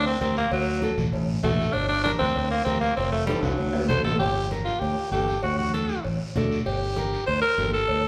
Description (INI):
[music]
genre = latin, cumbia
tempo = 195 BPM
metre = 4/4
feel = straight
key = G minor, G harmonic minor from 4.2 s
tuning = A4 = 441 Hz
[part]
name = raspy alto saxophone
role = melody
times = 0.0-8.1 s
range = F#3 to C5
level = -28 LUFS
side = equal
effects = none
[part]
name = fingered electric bass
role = bass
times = 0.0-8.1 s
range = F1 to D2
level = -30 LUFS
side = equal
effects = none
[part]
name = congas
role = percussion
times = 0.1-8.0 s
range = none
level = -36 LUFS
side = equal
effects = none
[part]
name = nylon-string guitar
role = accompaniment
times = 0.2-7.8 s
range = C4 to D5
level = -36 LUFS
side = equal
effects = none
[part]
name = guiro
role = percussion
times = 0.2-8.1 s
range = none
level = -44 LUFS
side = equal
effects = none
[part]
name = cowbell and timbales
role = percussion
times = 0.5-8.0 s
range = none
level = -35 LUFS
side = equal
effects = none
[sound]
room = wet large studio reverb, RT60 1.4 s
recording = band playing live in one room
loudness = -25 LUFS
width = mono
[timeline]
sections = 0.0-4.2 A section; 4.2-8.1 B section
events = drum fill 3.3-4.2; nylon-string guitar fill 6.2-6.7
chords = 0.0 Gm; 0.5 D; 1.7 Gm; 3.0 F; 3.6 D7; 4.2 Gm; 5.4 D; 6.7 Gm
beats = 0.21 | 0.52 0.83 1.13 1.44 | 1.75 2.06 2.36 2.67 | 2.98 3.28 3.59 3.90 | 4.21 4.51 4.82 5.13 | 5.43 5.74 6.05 6.36 | 6.67 6.97 7.28 7.59 | 7.90